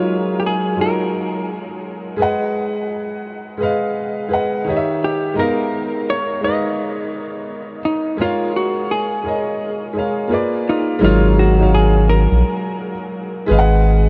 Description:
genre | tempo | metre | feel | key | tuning
lo-fi hip hop | 85 BPM | 4/4 | swing 63% on 16ths | G# dorian | A4 = 444 Hz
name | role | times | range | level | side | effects
hollow-body jazz guitar | melody | 0.0-12.8 s | D#4 to D#5 | -25 LUFS | equal | low-pass filter, analog delay
clear upright piano | accompaniment | 0.0-14.1 s | D#3 to F#5 | -21 LUFS | equal | cassette tape, low-pass filter
saturated sub bass | bass | 11.0-14.1 s | G#1 to A#1 | -16 LUFS | equal | none
room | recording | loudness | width
moderate huge ambient reverb, RT60 7.7 s | dreamy mix soaked in reverb | -18 LUFS | mono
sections
0.0-11.0 A section; 11.0-14.1 B section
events
none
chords
0.0 D#m9; 2.2 G#m7; 4.7 D#7b9; 5.4 G#m69; 8.2 A#m7/G#; 10.3 A#7b9; 11.0 D#m9/G#; 13.5 G#m7

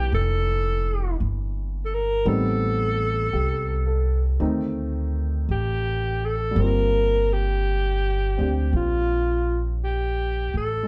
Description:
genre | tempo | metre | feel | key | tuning
jazz ballad | 56 BPM | 4/4 | swing 68% on 8ths | unclear | A4 = 440 Hz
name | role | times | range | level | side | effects
mellow alto saxophone | melody | 0.0-10.9 s | F4 to Bb4 | -28 LUFS | equal | none
warm baby grand piano | accompaniment | 0.0-10.9 s | Eb3 to A4 | -33 LUFS | equal | none
upright bass | bass | 0.0-10.9 s | F1 to D2 | -26 LUFS | equal | none
room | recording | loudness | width
moderate studio reverb, RT60 0.8 s | heard from further back in the room | -24 LUFS | mono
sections
0.0-10.9 A section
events
none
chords
0.0 Bbmaj9#11; 2.3 Am7b5; 4.4 D5; 6.6 Gm11

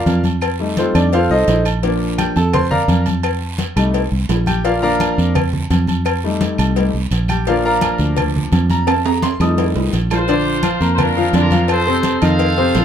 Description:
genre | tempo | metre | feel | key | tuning
latin, salsa | 170 BPM | 4/4 | straight | Bb major | A4 = 439 Hz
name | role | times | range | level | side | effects
bright grand piano | accompaniment | 0.0-12.8 s | C3 to Eb6 | -18 LUFS | left 1 dB | none
fingered electric bass | bass | 0.0-12.8 s | Bb1 to F2 | -18 LUFS | right 1 dB | none
agogo bells and timbales | percussion | 0.1-12.8 s | none | -24 LUFS | right 3 dB | none
congas | percussion | 0.1-12.8 s | none | -23 LUFS | left 1 dB | none
cowbell | percussion | 0.1-12.8 s | none | -25 LUFS | left 7 dB | none
guiro | percussion | 0.1-12.8 s | none | -32 LUFS | right 6 dB | none
claves | percussion | 0.4-12.4 s | none | -32 LUFS | right 3 dB | none
bright horn section | melody | 10.1-12.8 s | D4 to F5 | -19 LUFS | equal | none
room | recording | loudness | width
moderate studio reverb, RT60 0.5 s | dark, warm production | -14 LUFS | side -9 dB against mid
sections
0.0-10.3 A section; 10.3-12.8 B section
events
grand piano solo 0.0-10.3; drum fill 8.9-10.3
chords
0.4 F7; 1.8 Bb; 3.2 F7; 4.7 Bb; 6.1 F7; 7.5 Bb; 8.9 F7; 10.3 Bb; 11.7 F7

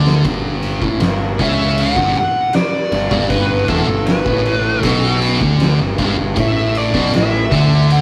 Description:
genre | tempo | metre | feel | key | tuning
stoner and doom metal | 78 BPM | 4/4 | straight | unclear | A4 = 441 Hz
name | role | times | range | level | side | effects
thick fuzz guitar | riff | 0.0-8.0 s | E2 to D3 | -19 LUFS | equal | distortion
fuzz fingered electric bass | bass | 0.0-8.0 s | E1 to D2 | -23 LUFS | equal | overdrive
oversized low-tuned drum kit | drums | 0.1-8.0 s | kick drum, ride cymbal, snare drum | -22 LUFS | equal | none
fuzz lead guitar | melody | 1.4-8.0 s | A4 to F#5 | -21 LUFS | equal | wah, distortion
room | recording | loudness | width
moderate stone room reverb, RT60 0.9 s | rough rehearsal-room recording, tube saturation | -16 LUFS | mono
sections
0.0-8.0 A section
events
drum fill 0.0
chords
0.2 G5; 6.4 A5

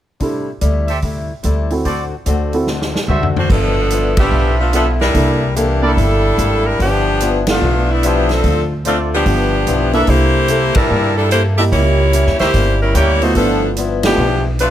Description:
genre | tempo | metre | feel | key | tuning
jazz, big band swing | 146 BPM | 4/4 | swing 65% on 8ths | G mixolydian | A4 = 440 Hz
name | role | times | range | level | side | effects
picked old ladder-braced acoustic guitar | accompaniment | 0.2-14.7 s | G2 to A4 | -22 LUFS | left 5 dB | none
warm baby grand piano | accompaniment | 0.2-14.2 s | A3 to Eb5 | -20 LUFS | right 2 dB | none
swinging big-band drum kit | drums | 0.2-14.7 s | crash cymbal, hi-hat, kick drum, ride cymbal, snare drum, toms | -21 LUFS | equal | none
upright bass | bass | 0.6-14.7 s | G1 to G2 | -17 LUFS | equal | none
brilliant trumpet section | stabs | 0.9-13.1 s | E4 to A5 | -23 LUFS | right 3 dB | none
edgy saxophone section | melody | 3.4-14.7 s | E3 to E5 | -16 LUFS | equal | none
room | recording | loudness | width
light reverb | close, detailed microphones | -13 LUFS | side -11 dB against mid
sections
0.2-3.5 A section; 3.5-14.7 B section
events
drum fill 2.7-3.5; band accent 4.1, 7.4, 10.7, 14.0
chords
0.2 C6; 1.9 D7; 3.5 G13; 5.1 C13; 6.8 G13; 8.4 Dm7; 9.3 G13; 10.1 C13; 11.7 C#dim7; 13.4 G13

